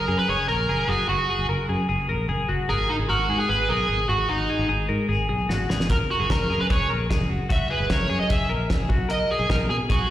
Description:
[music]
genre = jangly indie pop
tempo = 150 BPM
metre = 4/4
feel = straight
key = F# major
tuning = A4 = 438 Hz
[part]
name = smooth overdriven lead guitar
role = melody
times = 0.0-10.1 s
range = D#4 to E5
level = -25 LUFS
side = right 2 dB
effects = slapback echo, analog delay
[part]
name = twelve-string electric guitar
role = arpeggios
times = 0.0-10.1 s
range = F#4 to A#4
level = -28 LUFS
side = left 4 dB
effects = slapback echo, analog delay
[part]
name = fingered electric bass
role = bass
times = 0.0-10.1 s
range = F#1 to B2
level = -26 LUFS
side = equal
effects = none
[part]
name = cloth-damped thuddy drum kit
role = drums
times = 5.5-10.0 s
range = hi-hat, kick drum, snare drum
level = -24 LUFS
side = equal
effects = slapback echo
[sound]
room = light reverb, small room ambience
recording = live gig heard through the venue's PA, recital hall reverb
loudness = -21 LUFS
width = side -12 dB against mid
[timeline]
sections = 0.0-10.1 A section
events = drum fill 5.5-5.9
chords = 0.0 F#; 2.7 G#7(no3); 5.9 F#; 8.9 B5

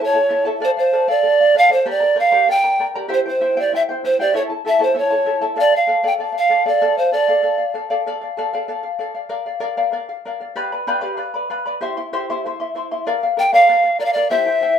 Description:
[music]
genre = andean folk, Andean ensemble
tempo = 96 BPM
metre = 2/4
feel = straight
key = D minor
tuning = A4 = 440 Hz
[part]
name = polished pan flute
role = melody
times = 0.0-7.7, 13.4-14.8 s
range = C5 to G5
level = -14 LUFS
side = right 2 dB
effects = none
[part]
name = charango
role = accompaniment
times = 0.0-14.8 s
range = E4 to C6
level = -21 LUFS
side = left 3 dB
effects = none
[sound]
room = wet small room reverb, RT60 0.5 s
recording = minimal, uncompressed stereo recording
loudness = -15 LUFS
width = side -8 dB against mid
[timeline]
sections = 0.0-8.1 A section; 8.1-13.1 B section; 13.1-14.8 C section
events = none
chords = 0.0 A; 0.6 Dm; 1.9 Gm; 3.1 C; 4.3 A; 5.6 Dm; 9.3 Bb; 10.6 G7; 11.8 C; 13.1 Bb

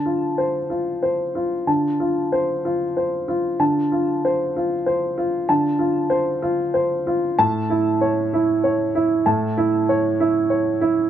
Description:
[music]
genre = neoclassical minimalist piano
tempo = 63 BPM (dotted quarters)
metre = 6/8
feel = rubato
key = D minor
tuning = A4 = 438 Hz
[part]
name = dark upright piano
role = solo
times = 0.0-11.1 s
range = A2 to A5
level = -18 LUFS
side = equal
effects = none
[sound]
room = light reverb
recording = none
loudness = -18 LUFS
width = side -10 dB against mid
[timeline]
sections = 0.0-11.1 A section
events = none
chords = 0.0 Dm7; 7.4 A

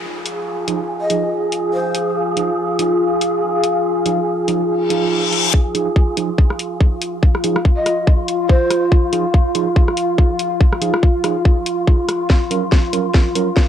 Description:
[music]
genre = deep dubstep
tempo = 142 BPM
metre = 4/4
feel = swing 57% on 16ths, half-time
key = F minor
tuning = A4 = 439 Hz
[part]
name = deep dark ambient pad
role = sustained chords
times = 0.0-13.7 s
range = F4 to F5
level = -20 LUFS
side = left 1 dB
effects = chorus, built-in reverb, cassette tape
[part]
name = downlifter and reverse cymbal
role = sound effects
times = 0.0-5.5 s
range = none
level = -22 LUFS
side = left 6 dB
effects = none
[part]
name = wind-like tuned noise texture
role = texture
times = 0.0-13.7 s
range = F4 to Ab4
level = -23 LUFS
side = equal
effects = built-in reverb, cassette tape
[part]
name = garage drum kit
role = drums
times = 0.3-13.7 s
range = hi-hat, rim click, snare drum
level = -22 LUFS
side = left 1 dB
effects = cassette tape
[part]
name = mellow tine electric piano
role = stabs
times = 0.7-13.5 s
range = F3 to Bb4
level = -24 LUFS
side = right 9 dB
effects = medium stereo tremolo, low-pass filter, cassette tape, dub echo
[part]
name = breathy long shakuhachi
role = melody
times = 1.0-2.1, 7.8-8.8 s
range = C5 to Eb5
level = -23 LUFS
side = left 1 dB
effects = low-pass filter, cassette tape, dub echo
[part]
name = electronic kick drum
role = drums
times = 5.5-13.7 s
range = none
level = -12 LUFS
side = equal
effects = cassette tape
[sound]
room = light reverb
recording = home recording on cassette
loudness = -14 LUFS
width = side -10 dB against mid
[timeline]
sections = 0.0-5.5 A section; 5.5-13.7 B section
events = reverse cymbal 4.9-5.5; build-up 5.5-13.7; filter sweep on tine electric piano 5.5-13.7; drum fill 12.3-13.7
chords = 0.0 Fm7; 5.5 N.C.; 12.3 Gb

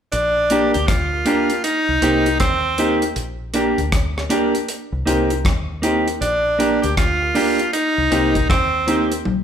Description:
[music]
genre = roots reggae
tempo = 79 BPM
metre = 4/4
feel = swing 62% on 16ths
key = Bb major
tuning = A4 = 441 Hz
[part]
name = clear tenor saxophone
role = second line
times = 0.1-9.1 s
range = C4 to G4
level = -19 LUFS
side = equal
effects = none
[part]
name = deep dub fingered electric bass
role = bass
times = 0.1-9.4 s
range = Bb1 to Eb2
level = -25 LUFS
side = left 1 dB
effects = none
[part]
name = deep reggae drum kit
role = drums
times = 0.1-9.4 s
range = hi-hat, kick drum, rim click, toms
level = -22 LUFS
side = equal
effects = none
[part]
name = mellow electric guitar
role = accompaniment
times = 0.5-9.1 s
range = Bb3 to G4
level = -20 LUFS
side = right 2 dB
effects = none
[part]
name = clear upright piano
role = stabs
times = 0.5-9.1 s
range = C4 to Bb4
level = -25 LUFS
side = left 5 dB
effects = none
[sound]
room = moderate large studio reverb, RT60 1.1 s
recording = band playing live in one room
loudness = -16 LUFS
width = side -8 dB against mid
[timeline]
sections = 0.1-9.4 A section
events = drum fill 9.3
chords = 0.1 Bb6; 1.6 Cm7; 3.2 Bb6; 4.7 Cm7; 6.2 Bb6; 7.7 Cm7

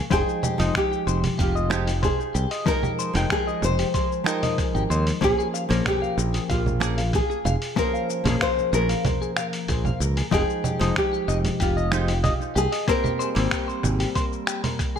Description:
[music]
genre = sunset chillout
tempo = 94 BPM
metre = 4/4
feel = straight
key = Bb dorian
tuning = A4 = 440 Hz
[part]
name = hollow-body jazz guitar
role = accompaniment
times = 0.0-15.0 s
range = F3 to G5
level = -28 LUFS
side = moving between left 4 dB and right 2 dB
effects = auto-pan, analog delay
[part]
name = clean electric guitar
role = arpeggios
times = 0.0-15.0 s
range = G4 to F5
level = -32 LUFS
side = left 4 dB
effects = analog chorus, analog delay
[part]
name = nylon-string guitar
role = melody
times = 0.1-14.8 s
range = F4 to C5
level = -27 LUFS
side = left 1 dB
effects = dub echo
[part]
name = modern bright fingered electric bass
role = bass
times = 0.1-14.0 s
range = F1 to Eb2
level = -24 LUFS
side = right 1 dB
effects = none
[part]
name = dusty soul sampler-style drum kit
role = drums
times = 0.1-15.0 s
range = congas, finger snaps, hi-hat, shaker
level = -29 LUFS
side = right 2 dB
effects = studio ambience, analog delay
[part]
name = electronic kick drum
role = drums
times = 0.1-14.9 s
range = none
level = -28 LUFS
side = right 1 dB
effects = studio ambience
[sound]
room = light reverb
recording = echo-heavy mix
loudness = -21 LUFS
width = side -8 dB against mid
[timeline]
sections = 0.0-15.0 A section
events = none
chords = 0.1 Fm9; 5.2 Bbm7; 10.3 Fm9; 12.9 Abmaj9

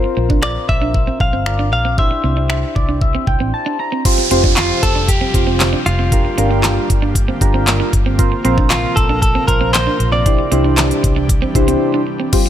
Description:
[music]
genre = dance-pop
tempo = 116 BPM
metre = 4/4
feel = straight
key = unclear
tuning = A4 = 440 Hz
[part]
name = soft electric-piano-like synth keys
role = accompaniment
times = 0.0-12.5 s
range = G3 to Bb5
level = -19 LUFS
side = equal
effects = chorus, phaser
[part]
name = clean electric guitar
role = riff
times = 0.0-12.5 s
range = C4 to F4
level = -24 LUFS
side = right 6 dB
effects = lush chorus
[part]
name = vintage muted fingered electric bass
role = bass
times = 0.0-11.7 s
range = F1 to C2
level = -19 LUFS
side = equal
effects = sidechain pumping
[part]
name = pop drum kit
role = drums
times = 0.3-12.4 s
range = crash cymbal, finger snaps, handclaps, hi-hat, kick drum, snare drum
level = -16 LUFS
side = equal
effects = none
[part]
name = direct-recorded clean electric guitar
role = melody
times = 0.4-11.8 s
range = F4 to F5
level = -20 LUFS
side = left 1 dB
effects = ping-pong delay
[part]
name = airy breathy pad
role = sustained chords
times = 4.0-12.5 s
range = C3 to Bb4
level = -24 LUFS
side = equal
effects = chorus, sidechain pumping
[part]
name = downlifter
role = sound effects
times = 4.1-8.2 s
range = none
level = -23 LUFS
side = right 3 dB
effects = none
[part]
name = group handclap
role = percussion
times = 8.7-10.9 s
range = none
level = -29 LUFS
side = left 10 dB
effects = none
[sound]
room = little or no reverb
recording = none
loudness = -13 LUFS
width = side -10 dB against mid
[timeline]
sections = 0.0-4.1 A section; 4.1-12.3 B section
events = synth keys fill 2.5-4.1; break 3.5-4.1, 11.8-12.3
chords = 0.0 Bbsus2; 2.0 Cadd9; 4.1 Fsus2; 6.1 Gm7; 8.2 Bbsus2; 10.3 Cadd9

